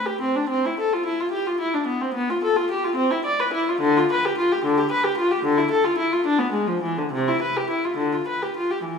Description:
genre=classical, baroque-style suite movement for unaccompanied viola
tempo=67-75 BPM (dotted quarters)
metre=6/8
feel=rubato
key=unclear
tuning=A4 = 440 Hz
part: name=warm viola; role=solo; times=0.0-9.0 s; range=C3 to D5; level=-20 LUFS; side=left 1 dB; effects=none
room=moderate scoring stage reverb, RT60 1.9 s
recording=none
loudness=-20 LUFS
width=side -6 dB against mid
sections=0.0-9.0 A section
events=none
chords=none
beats=| 0.50 1.33 | 2.14 2.95 | 3.80 4.62 | 5.43 6.25 | 7.12 7.99 | 8.85

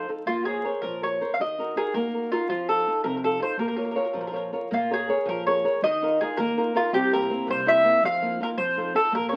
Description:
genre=italian folk, Italian serenade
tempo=108 BPM (dotted quarters)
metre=6/8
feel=rubato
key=Bb minor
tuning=A4 = 440 Hz
part: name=mandolin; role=melody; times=0.0-9.3 s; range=F4 to F5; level=-26 LUFS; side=equal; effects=none
part: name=flamenco guitar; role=accompaniment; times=0.0-9.4 s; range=C3 to Db5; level=-30 LUFS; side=equal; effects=none
part: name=upright bass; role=bass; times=0.0-9.4 s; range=Bb1 to F3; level=-44 LUFS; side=equal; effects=none
room=wet small room reverb, RT60 0.5 s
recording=very old 78 rpm record, vinyl crackle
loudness=-25 LUFS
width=mono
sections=0.0-4.7 A section; 4.7-9.4 A section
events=none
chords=0.3 Bbmadd9; 1.4 Ebm; 2.5 F7; 3.6 Bbm; 4.7 Bbm7; 5.8 Ebsus2; 6.9 C7; 8.0 F7sus4; 8.6 F7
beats=| 0.26 0.82 | 1.39 1.94 | 2.49 3.03 | 3.58 4.14 | 4.71 5.27 | 5.83 6.38 | 6.93 7.47 | 8.02 8.58 | 9.14

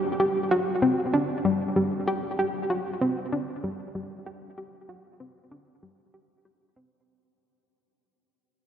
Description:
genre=ambient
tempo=96 BPM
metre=4/4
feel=straight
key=unclear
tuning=A4 = 438 Hz
part: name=analog pluck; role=riff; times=0.0-7.0 s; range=G3 to G4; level=-24 LUFS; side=equal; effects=chorus, cassette tape, tape echo
room=wet cathedral reverb, RT60 7.0 s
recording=in a vast, echoing space, lossy compression artefacts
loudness=-24 LUFS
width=side -9 dB against mid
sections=0.0-7.1 A section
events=fade-out 0.0-7.1; filter sweep on synth arpeggio sound 0.0-7.1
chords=none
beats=0.20 0.82 1.45 | 2.08 2.70 3.33 3.95 | 4.58 5.20 5.83 6.45

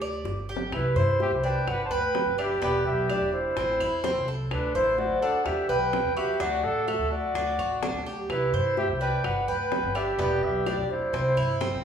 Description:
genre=latin, Cuban son and guajira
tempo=127 BPM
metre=4/4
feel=straight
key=G major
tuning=A4 = 440 Hz
part: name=warm clarinet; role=melody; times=0.0-11.8 s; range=G4 to A5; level=-29 LUFS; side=right 1 dB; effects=none
part: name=Cuban tres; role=arpeggios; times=0.0-11.8 s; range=B3 to D5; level=-30 LUFS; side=right 1 dB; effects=none
part: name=upright bass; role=bass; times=0.0-11.8 s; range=E1 to G2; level=-31 LUFS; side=equal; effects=none
part: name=bongos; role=percussion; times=0.0-11.8 s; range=none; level=-37 LUFS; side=left 2 dB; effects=none
part: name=claves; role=percussion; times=0.0-11.6 s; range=none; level=-43 LUFS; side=right 1 dB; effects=none
part: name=warm trumpet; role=second line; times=0.7-11.8 s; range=D4 to C5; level=-29 LUFS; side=equal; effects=none
room=wet large studio reverb, RT60 1.3 s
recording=band playing live in one room, small room ambience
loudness=-24 LUFS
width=side -8 dB against mid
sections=0.7-11.8 A section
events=drum fill 0.3-0.7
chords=0.0 G5; 0.7 C5; 1.7 G; 2.6 E5; 3.6 Am; 4.5 D5; 5.5 Em7; 6.4 D; 8.3 C5; 9.2 G; 10.2 E5; 11.1 C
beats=0.26 | 0.73 1.20 1.68 2.15 | 2.62 3.10 3.57 4.04 | 4.52 4.99 5.46 5.94 | 6.41 6.88 7.36 7.83 | 8.30 8.77 9.25 9.72 | 10.19 10.67 11.14 11.61

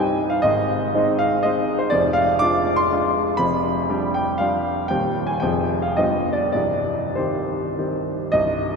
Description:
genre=classical, romantic triple-time dance for piano with dotted rhythms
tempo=94-131 BPM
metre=3/4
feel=rubato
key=C minor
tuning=A4 = 440 Hz
part: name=clear grand piano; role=solo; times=0.0-8.8 s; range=C1 to D6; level=-18 LUFS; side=equal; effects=none
room=wet cathedral reverb, RT60 5.9 s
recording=none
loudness=-18 LUFS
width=side -5 dB against mid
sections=0.0-8.3 A section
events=none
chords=0.4 Ab; 1.9 Dm7b5/F; 3.4 G7/F; 4.9 Cm/Eb; 5.4 Fm; 6.0 G7; 6.6 Cm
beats=| 0.43 0.94 1.45 | 1.92 2.40 2.90 | 3.38 3.89 4.41 | 4.91 5.43 5.99 | 6.55 7.17 7.79 | 8.34

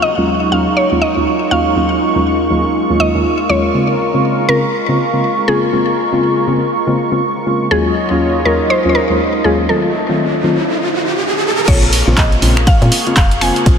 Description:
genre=deep house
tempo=121 BPM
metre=4/4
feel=swing 60% on 16ths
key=Bb minor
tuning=A4 = 441 Hz
part: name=mallet-like synth pluck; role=melody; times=0.0-13.8 s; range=Ab4 to Ab5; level=-18 LUFS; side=equal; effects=chorus, ping-pong delay
part: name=warm analog pad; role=sustained chords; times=0.0-13.8 s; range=Gb3 to Db6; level=-19 LUFS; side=right 1 dB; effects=chorus, tremolo, sidechain pumping
part: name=warbly tape-like pad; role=texture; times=0.1-13.8 s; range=Eb4 to Db6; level=-22 LUFS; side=right 1 dB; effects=chorus, built-in reverb, sidechain pumping
part: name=deep mellow chord stab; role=stabs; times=0.2-13.8 s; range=Eb2 to F4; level=-16 LUFS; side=left 1 dB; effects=chorus, sidechain pumping, ping-pong delay
part: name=riser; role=sound effects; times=9.3-11.7 s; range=none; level=-19 LUFS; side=right 2 dB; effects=none
part: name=woody FM bass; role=bass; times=11.7-13.8 s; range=F1 to Bb2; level=-15 LUFS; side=equal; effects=sidechain pumping
part: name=electronic kick drum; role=drums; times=11.7-13.8 s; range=none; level=-12 LUFS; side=equal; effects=none
part: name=punchy analog drum machine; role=drums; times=11.7-13.8 s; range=crash cymbal, finger snaps, handclaps, hi-hat, ride cymbal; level=-17 LUFS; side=equal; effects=none
room=wet huge ambient reverb, RT60 4.7 s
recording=dreamy mix soaked in reverb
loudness=-11 LUFS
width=side -7 dB against mid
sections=0.0-11.7 A section; 11.7-13.8 B section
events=filter sweep on synth stab 0.0-11.7; filter sweep on analog synth pad 0.0-11.7; riser 9.3-11.7; drop 11.7-13.8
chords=0.0 Ebm11; 3.7 Bbm7; 7.7 Ebm11; 9.7 F7b9; 11.7 Bbm7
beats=0.27 0.77 1.26 | 1.76 2.26 2.75 3.25 | 3.74 4.24 4.74 5.23 | 5.73 6.22 6.72 7.21 | 7.71 8.21 8.70 9.20 | 9.69 10.19 10.69 11.18 | 11.68 12.17 12.67 13.16 | 13.66

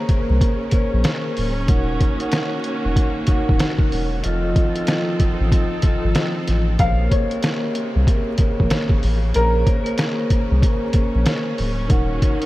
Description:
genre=hip hop, boom-bap hip-hop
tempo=94 BPM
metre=4/4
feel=swing 62% on 16ths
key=Bb harmonic minor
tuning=A4 = 439 Hz
part: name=dark upright piano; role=melody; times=0.0-1.7, 6.8-11.9 s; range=Bb4 to F5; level=-28 LUFS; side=left 1 dB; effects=lush chorus, high-pass filter, low-pass filter
part: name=vibraphone with soft mallets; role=accompaniment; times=0.0-12.5 s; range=F3 to Gb5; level=-24 LUFS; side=equal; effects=high-pass filter, low-pass filter
part: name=warm studio string section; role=sustained chords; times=0.0-12.5 s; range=C3 to A4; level=-29 LUFS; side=right 1 dB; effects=high-pass filter, low-pass filter
part: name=trip hop sampler-style drum kit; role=drums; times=0.1-12.5 s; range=hi-hat, kick drum, snare drum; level=-20 LUFS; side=equal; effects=none
part: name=soft dub sub bass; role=bass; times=0.3-12.2 s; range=D1 to C2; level=-19 LUFS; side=equal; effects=none
room=light reverb, small room ambience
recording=vinyl crackle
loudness=-17 LUFS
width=side -17 dB against mid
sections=0.0-12.5 A section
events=none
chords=0.0 Bbmadd9; 1.7 Ebm7; 4.2 F7; 6.8 Bbmadd9; 11.9 Ebm7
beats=0.41 1.05 | 1.69 2.33 2.96 3.60 | 4.24 4.88 5.52 6.16 | 6.79 7.43 8.07 8.71 | 9.35 9.98 10.62 11.26 | 11.90

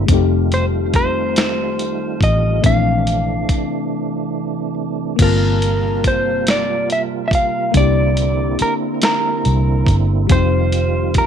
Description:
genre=slow six-eight R&B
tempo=47 BPM (dotted quarters)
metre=6/8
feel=straight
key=G dorian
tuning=A4 = 437 Hz
part: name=FM electric piano with auto-pan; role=accompaniment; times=0.0-11.3 s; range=E3 to A5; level=-22 LUFS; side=left 18 dB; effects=none
part: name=tonewheel organ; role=sustained chords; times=0.0-11.3 s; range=C3 to F4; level=-24 LUFS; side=right 16 dB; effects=chorus vibrato, stopped rotary speaker
part: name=vintage muted fingered electric bass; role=bass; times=0.0-11.3 s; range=F1 to C2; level=-17 LUFS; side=equal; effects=none
part: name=dusty soul sampler-style drum kit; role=drums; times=0.1-11.3 s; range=crash cymbal, hi-hat, kick drum, snare drum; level=-19 LUFS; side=equal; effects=none
part: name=electric guitar at the edge of break-up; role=melody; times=0.5-11.3 s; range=Bb4 to F5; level=-20 LUFS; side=equal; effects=none
room=digital ambience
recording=1960s-style stereo with parts hard left and right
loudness=-14 LUFS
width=side -8 dB against mid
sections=0.0-5.2 A section; 5.2-11.3 A section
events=break 3.9-5.2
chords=0.1 F9; 2.6 Bbmaj9#11; 5.2 Gm11; 7.7 C9; 10.3 F7sus2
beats=| 0.08 1.36 | 2.64 3.91 | 5.19 6.47 | 7.74 9.02 | 10.30

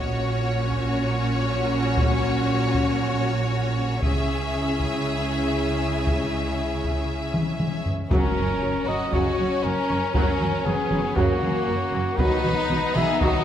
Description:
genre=cinematic, epic orchestral film score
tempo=117 BPM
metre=4/4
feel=straight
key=F# mixolydian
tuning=A4 = 440 Hz
part: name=rich symphonic violin section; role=melody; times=0.0-13.4 s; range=A#3 to E5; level=-29 LUFS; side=left 4 dB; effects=none
part: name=warm symphonic violin section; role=second line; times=0.0-13.4 s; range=B3 to G#4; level=-30 LUFS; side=left 3 dB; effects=none
part: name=warm symphonic viola section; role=accompaniment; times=0.0-13.4 s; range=F#3 to C#4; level=-31 LUFS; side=right 1 dB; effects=none
part: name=warm French horn section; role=sustained chords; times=0.0-13.4 s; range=F#3 to F#4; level=-31 LUFS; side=left 3 dB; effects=none
part: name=rich studio double bass section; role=bass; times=0.0-13.3 s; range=F#1 to C#2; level=-30 LUFS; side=right 3 dB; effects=none
part: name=warm symphonic cello section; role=bass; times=0.0-13.3 s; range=F#2 to C#3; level=-30 LUFS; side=right 2 dB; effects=none
part: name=solo taiko drums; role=drums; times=0.7-13.4 s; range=none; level=-27 LUFS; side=equal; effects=none
part: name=warm trombone section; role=sustained chords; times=8.1-13.4 s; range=C#3 to F#3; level=-34 LUFS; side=right 3 dB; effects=none
part: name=mellow trumpet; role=stabs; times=8.1-13.4 s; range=F#4 to E5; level=-26 LUFS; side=right 2 dB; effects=none
part: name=timpani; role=percussion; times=8.1-8.8 s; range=F#2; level=-33 LUFS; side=left 1 dB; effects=none
part: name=impact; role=sound effects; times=8.1-10.2 s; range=none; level=-37 LUFS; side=equal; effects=none
room=moderate concert hall reverb, RT60 2.0 s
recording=none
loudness=-21 LUFS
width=side -10 dB against mid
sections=0.0-8.1 A section; 8.1-13.4 B section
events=build-up 0.0-8.1; drum fill 7.3-8.1; impact 8.1-10.2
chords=0.0 F#/A#; 4.0 C#m; 8.1 F#; 12.2 B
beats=0.45 0.96 1.47 | 1.99 2.50 3.01 3.52 | 4.03 4.54 5.05 5.56 | 6.07 6.58 7.09 7.61 | 8.12 8.63 9.14 9.65 | 10.16 10.67 11.18 11.69 | 12.20 12.71 13.22

